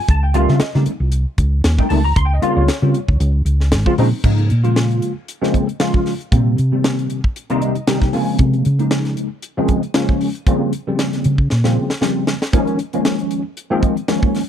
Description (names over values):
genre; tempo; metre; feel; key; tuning
electric jazz fusion; 116 BPM; 4/4; swing 55% on 16ths; Db lydian; A4 = 441 Hz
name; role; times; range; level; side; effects
tine electric piano; accompaniment; 0.0-14.4 s; C3 to C6; -18 LUFS; equal; overdrive, fast stereo tremolo, ensemble chorus
hollow-body short-scale fingered electric bass; bass; 0.1-11.8 s; Ab1 to Db3; -15 LUFS; equal; none
crisp fusion drum kit; drums; 0.1-14.5 s; crash cymbal, hi-hat, kick drum, snare drum; -19 LUFS; equal; none
room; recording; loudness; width
little or no reverb; dry, close 1970s-style studio recording; -15 LUFS; side -9 dB against mid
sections
0.0-4.2 A section; 4.2-14.5 A section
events
fingered electric bass solo 4.2-14.5; tine electric piano fill 7.4-8.4; drum fill 11.5-12.5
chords
0.1 F9; 2.2 Eb13/Db; 3.2 Dbmaj9; 6.3 Cm7; 8.1 Bbm9; 10.5 Bbm69; 12.5 Db6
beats
| 0.09 0.61 1.13 1.65 | 2.17 2.69 3.21 3.72 | 4.24 4.76 5.28 5.80 | 6.32 6.84 7.36 7.88 | 8.39 8.91 9.43 9.95 | 10.47 10.98 11.50 12.02 | 12.54 13.05 13.57 14.09